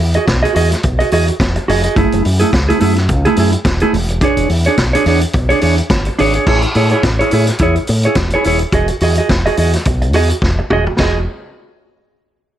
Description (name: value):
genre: disco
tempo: 106 BPM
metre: 4/4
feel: swing 56% on 16ths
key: E major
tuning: A4 = 443 Hz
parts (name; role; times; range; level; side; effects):
- mellow electric guitar; accompaniment; 0.0-11.2 s; A3 to D#5; -15 LUFS; right 2 dB; none
- fingered electric bass with an envelope filter; bass; 0.0-11.3 s; D#1 to A2; -15 LUFS; equal; none
- vintage drum kit; drums; 0.1-11.1 s; crash cymbal, hi-hat, kick drum, ride cymbal, snare drum, toms; -18 LUFS; equal; none
room: small room ambience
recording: none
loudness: -11 LUFS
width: side -11 dB against mid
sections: 0.0-6.5 A section; 6.5-11.0 B section; 11.0-12.6 C section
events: drum fill 10.4-11.0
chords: 0.0 Emaj9; 2.0 F#m9; 3.9 E6; 6.5 Amaj7; 8.7 Emaj9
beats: 0.27 0.83 1.39 | 1.96 2.52 3.08 3.65 | 4.21 4.78 5.34 5.90 | 6.47 7.03 7.60 8.16 | 8.73 9.29 9.86 10.42 | 10.99